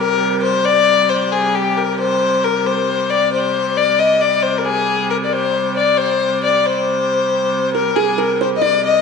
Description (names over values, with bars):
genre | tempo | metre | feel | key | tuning
medieval dance | 90 BPM (dotted quarters) | 6/8 | straight | unclear | A4 = 442 Hz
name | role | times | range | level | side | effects
dark fiddle | melody | 0.0-9.0 s | G4 to Eb5 | -15 LUFS | left 5 dB | tape echo
rich hurdy-gurdy | drone | 0.0-9.0 s | C3 to G3 | -22 LUFS | right 3 dB | none
kalimba | second line | 7.7-9.0 s | Ab4 to D5 | -19 LUFS | right 10 dB | none
room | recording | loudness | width
wet echo chamber reverb, RT60 1.4 s, small room ambience | 1960s-style stereo, nothing above 10.9 kHz | -14 LUFS | side -5 dB against mid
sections
0.0-8.0 A section; 8.0-9.0 B section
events
none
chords
none